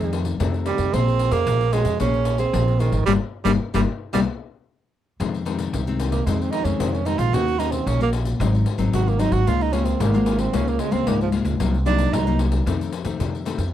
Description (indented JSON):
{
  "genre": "samba and choro",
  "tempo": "112 BPM",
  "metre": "4/4",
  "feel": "straight",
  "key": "F minor",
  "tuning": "A4 = 441 Hz",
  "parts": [
    { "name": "breathy tenor saxophone", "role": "second line", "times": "0.0-12.4 s", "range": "Eb3 to Gb4", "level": "-24 LUFS", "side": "right 8 dB", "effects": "none" },
    { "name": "nylon-string guitar", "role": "accompaniment", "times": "0.0-13.7 s", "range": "F2 to C5", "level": "-24 LUFS", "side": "left 5 dB", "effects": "none" },
    { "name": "upright bass", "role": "bass", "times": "0.0-13.7 s", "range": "G1 to F2", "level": "-23 LUFS", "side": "equal", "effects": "none" },
    { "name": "pandeiro", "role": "percussion", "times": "0.0-13.7 s", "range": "none", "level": "-29 LUFS", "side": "left 8 dB", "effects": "none" }
  ],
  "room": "light reverb",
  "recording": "dry, close 1970s-style studio recording",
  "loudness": "-19 LUFS",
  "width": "side -11 dB against mid",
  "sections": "0.0-5.2 A section; 5.2-13.7 B section",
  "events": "tenor saxophone solo 0.0-5.2, 5.2-13.7; band accent 3.1-5.2",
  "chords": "0.0 F7; 0.9 Bbm9; 3.1 Gm; 4.1 C5; 5.2 Fm7; 7.3 Ebm7; 8.4 Ab7; 9.5 Db6; 11.6 Cm7b5; 12.7 F7"
}